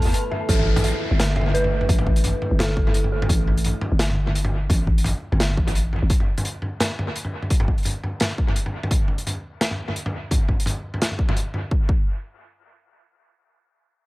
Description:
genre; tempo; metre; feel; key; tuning
half-time drum and bass; 171 BPM; 4/4; swing 56% on 16ths, half-time; unclear; A4 = 438 Hz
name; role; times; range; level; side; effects
deep dark ambient pad; sustained chords; 0.0-6.1 s; A3 to E5; -33 LUFS; equal; chorus, built-in reverb, sidechain pumping
dark detuned synth bell; arpeggios; 0.0-3.3 s; A4 to A5; -27 LUFS; right 1 dB; chorus, vintage 12-bit sampler grit, low-pass filter, dub echo
growling 808-style bass; bass; 0.0-6.1 s; G1 to E2; -21 LUFS; equal; none
crunchy breakbeat drum kit; drums; 0.0-11.6 s; hi-hat, snare drum, toms; -25 LUFS; equal; dub echo
electronic kick drum; drums; 0.5-12.0 s; none; -21 LUFS; equal; none
downlifter; sound effects; 0.5-3.3 s; none; -32 LUFS; left 1 dB; none
room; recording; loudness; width
studio ambience; echo-heavy mix; -20 LUFS; side -19 dB against mid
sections
0.5-11.7 A section; 11.7-14.1 B section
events
break 0.1-0.5; filter sweep on ambient pad 0.5-6.1; filter sweep on synth bell 0.5-3.3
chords
0.5 A5; 11.7 N.C.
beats
0.14 | 0.49 0.84 1.19 1.54 | 1.89 2.24 2.59 2.94 | 3.29 3.65 4.00 4.35 | 4.70 5.05 5.40 5.75 | 6.10 6.45 6.80 7.15 | 7.50 7.86 8.21 8.56 | 8.91 9.26 9.61 9.96 | 10.31 10.66 11.01 11.36 | 11.71

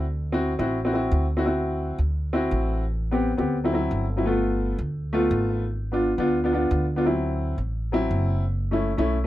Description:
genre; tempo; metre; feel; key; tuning
Afro-Cuban jazz; 172 BPM; 4/4; straight; D mixolydian; A4 = 442 Hz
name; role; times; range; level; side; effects
warm baby grand piano; accompaniment; 0.0-9.3 s; F#3 to G4; -24 LUFS; left 1 dB; none
upright bass; bass; 0.0-9.3 s; F#1 to D2; -26 LUFS; equal; none
room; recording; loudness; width
light reverb; none; -22 LUFS; side -15 dB against mid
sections
0.0-9.3 A section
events
none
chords
0.0 D7; 2.9 Am7; 3.6 D7; 4.3 G7; 5.7 G#dim7; 7.1 D7; 8.5 F#m7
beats
| 0.07 0.42 0.77 1.12 | 1.47 1.82 2.17 2.52 | 2.87 3.21 3.56 3.91 | 4.26 4.61 4.96 5.31 | 5.66 6.01 6.36 6.71 | 7.06 7.41 7.76 8.11 | 8.46 8.81 9.16

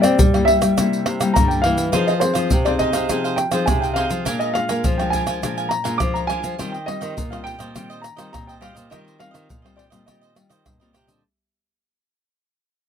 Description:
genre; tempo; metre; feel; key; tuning
samba and choro; 103 BPM; 4/4; straight; Eb major; A4 = 440 Hz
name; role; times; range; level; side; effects
dark baby grand piano; melody; 0.0-10.9 s; C5 to D6; -22 LUFS; equal; none
nylon-string guitar; accompaniment; 0.0-11.2 s; G2 to Ab4; -25 LUFS; left 5 dB; none
nylon-string guitar; bass; 0.0-11.2 s; G2 to C4; -24 LUFS; left 1 dB; none
egg shaker, pandeiro, tamborim and surdo; percussion; 0.0-11.2 s; none; -21 LUFS; equal; none
cavaquinho; accompaniment; 1.9-11.2 s; D4 to Ab5; -30 LUFS; right 6 dB; none
room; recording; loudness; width
light reverb; none; -17 LUFS; side -8 dB against mid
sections
0.0-11.2 A section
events
fade-out 0.0-11.2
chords
0.0 C7; 1.9 Fm7; 4.3 Bb7; 6.6 Eb69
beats
0.20 0.78 1.36 | 1.94 2.52 3.10 3.68 | 4.26 4.84 5.42 6.00 | 6.59 7.17 7.75 8.33 | 8.91 9.49 10.08 10.66

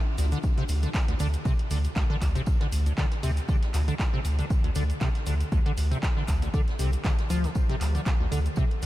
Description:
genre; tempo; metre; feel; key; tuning
acid house; 118 BPM; 4/4; swing 55% on 16ths; D minor; A4 = 440 Hz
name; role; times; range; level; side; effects
liquid acid bass; riff; 0.2-8.9 s; D2 to F3; -30 LUFS; equal; analog chorus, analog delay
round analog bass; bass; 0.2-8.9 s; C2 to D2; -26 LUFS; equal; sidechain pumping
punchy analog drum machine; drums; 0.2-8.9 s; handclaps, hi-hat; -38 LUFS; right 1 dB; none
tambourine and snare drum; drums; 0.2-8.9 s; none; -45 LUFS; right 1 dB; none
tube shaker; percussion; 0.2-8.9 s; none; -47 LUFS; left 5 dB; none
electronic kick drum; drums; 0.4-8.7 s; none; -26 LUFS; equal; none
room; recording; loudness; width
light reverb, small room ambience; none; -24 LUFS; side -15 dB against mid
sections
0.0-8.9 A section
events
none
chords
none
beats
0.44 0.94 | 1.45 1.96 2.47 2.98 | 3.49 4.00 4.50 5.01 | 5.52 6.03 6.54 7.05 | 7.55 8.06 8.57

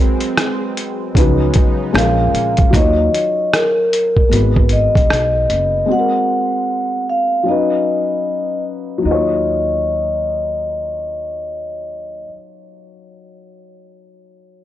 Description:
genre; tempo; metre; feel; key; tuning
lo-fi hip hop; 76 BPM; 4/4; swing 63% on 16ths; Eb minor; A4 = 437 Hz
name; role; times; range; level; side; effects
felt-muted upright piano; accompaniment; 0.0-14.6 s; F3 to Db5; -21 LUFS; left 2 dB; none
lush unison pad; sustained chords; 0.0-2.7 s; Db3 to Eb4; -27 LUFS; right 1 dB; chorus, phaser
lo-fi sampler-style drum kit; drums; 0.2-5.7 s; hi-hat, kick drum, rim click; -15 LUFS; equal; vintage 12-bit sampler grit
upright bass; bass; 1.2-12.3 s; Gb1 to Eb2; -19 LUFS; right 1 dB; none
vibraphone with soft mallets; melody; 2.0-12.3 s; Bb4 to Gb5; -17 LUFS; equal; analog delay
room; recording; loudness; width
little or no reverb; dry, gritty hardware recording, transformer saturation, low-pass filter; -14 LUFS; side -12 dB against mid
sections
0.0-2.7 A section; 2.7-9.0 B section; 9.0-12.2 C section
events
filter sweep 2.7-9.0; break 5.9-9.0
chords
0.0 Ab9; 1.1 Db9sus4; 1.9 Bbm7; 2.7 Ebm9; 4.3 Abm7; 5.9 Ab9; 7.5 Db9sus4; 9.0 Ebm9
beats
0.36 1.15 1.94 | 2.73 3.51 4.30 5.09 | 5.88 6.67 7.46 8.25 | 9.04 9.83 10.62 11.41

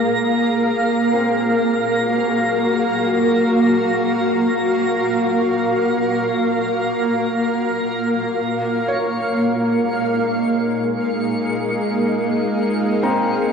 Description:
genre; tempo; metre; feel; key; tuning
ambient; free time; none; none; unclear; A4 = 441 Hz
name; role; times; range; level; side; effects
granular cloud pad; sustained chords; 0.0-13.5 s; Bb3 to F5; -17 LUFS; equal; built-in reverb, shimmer reverb
felt-muted upright piano; arpeggios; 0.0-13.5 s; C4 to Bb5; -28 LUFS; left 1 dB; tape echo
twinkling granular texture; texture; 0.0-13.5 s; Bb6 to Db7; -29 LUFS; right 1 dB; built-in reverb, shimmer reverb
bowed-like drone; drone; 9.9-13.5 s; Ab3 to Eb4; -25 LUFS; right 1 dB; built-in reverb
room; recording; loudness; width
wet concert hall reverb, RT60 2.2 s; worn, warbling old tape, cassette tape, warbly pitch drift; -17 LUFS; side -6 dB against mid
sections
0.0-13.5 A section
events
fade-in on felt piano 0.0-13.5; fade-out on synth texture 0.0-13.5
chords
0.1 Gbmaj7; 8.4 Db6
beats
free time

